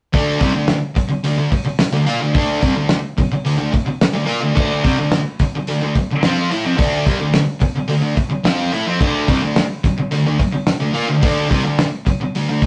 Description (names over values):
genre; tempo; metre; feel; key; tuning
garage rock duo or trio; 108 BPM; 4/4; straight; D minor; A4 = 441 Hz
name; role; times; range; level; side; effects
thick fuzz guitar; riff; 0.1-12.7 s; C3 to F4; -20 LUFS; equal; distortion
cloth-damped thuddy drum kit; drums; 0.1-12.7 s; crash cymbal, hi-hat, kick drum, snare drum; -20 LUFS; equal; vintage 12-bit sampler grit
room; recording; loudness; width
moderate studio reverb, RT60 0.5 s; rough rehearsal-room recording, tube saturation, cassette tape; -17 LUFS; mono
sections
0.1-12.7 A section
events
none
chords
0.1 Dm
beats
| 0.14 0.69 1.25 1.80 | 2.35 2.91 3.46 4.01 | 4.57 5.12 5.68 6.23 | 6.79 7.34 7.89 8.45 | 9.01 9.56 10.12 10.68 | 11.23 11.79 12.35